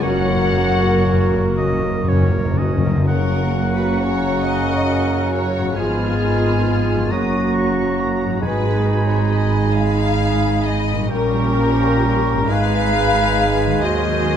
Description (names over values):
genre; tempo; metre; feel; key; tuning
classical; 38-46 BPM (dotted quarters); 6/8; rubato; F# major; A4 = 439 Hz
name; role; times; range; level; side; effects
muted studio violin section; melody; 0.0-14.4 s; F#5 to F6; -31 LUFS; left 4 dB; none
clear oboe; second line; 0.0-14.4 s; C#5 to A#5; -30 LUFS; right 1 dB; none
mellow flute section; second line; 0.0-14.4 s; F#5 to Db6; -31 LUFS; right 3 dB; none
muted studio violin section; second line; 0.0-14.4 s; Ab4 to E#5; -25 LUFS; left 3 dB; none
warm clarinet; second line; 0.0-14.4 s; Db4 to Gb4; -27 LUFS; equal; none
muted studio viola section; accompaniment; 0.0-14.4 s; D#3 to B4; -26 LUFS; right 3 dB; none
warm bassoon; accompaniment; 0.0-14.4 s; C#3 to Bb3; -26 LUFS; right 2 dB; none
dark French horn section; sustained chords; 0.0-14.4 s; F#3 to Gb4; -25 LUFS; left 2 dB; none
concert harp; arpeggios; 0.0-14.4 s; F#2 to C#5; -27 LUFS; left 10 dB; none
muted studio cello section; bass; 0.0-14.4 s; Eb2 to Bb2; -24 LUFS; right 3 dB; none
muted studio double bass section; bass; 0.0-14.4 s; F#1 to Eb2; -24 LUFS; right 3 dB; none
timpani; percussion; 0.0-3.0, 8.4-9.7 s; F#2 to G#2; -22 LUFS; left 2 dB; none
dark trumpet section; stabs; 3.0-14.4 s; F4 to C5; -28 LUFS; left 2 dB; none
room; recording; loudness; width
moderate concert hall reverb, RT60 2.2 s; none; -15 LUFS; side -8 dB against mid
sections
0.0-3.0 A section; 3.0-14.4 B section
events
timpani fill 0.0-3.0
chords
0.0 F#; 5.8 Fdim/Ab; 7.1 F#; 8.4 G#m; 11.1 Gdim/Bb; 12.5 G#m; 13.8 Ab7/Eb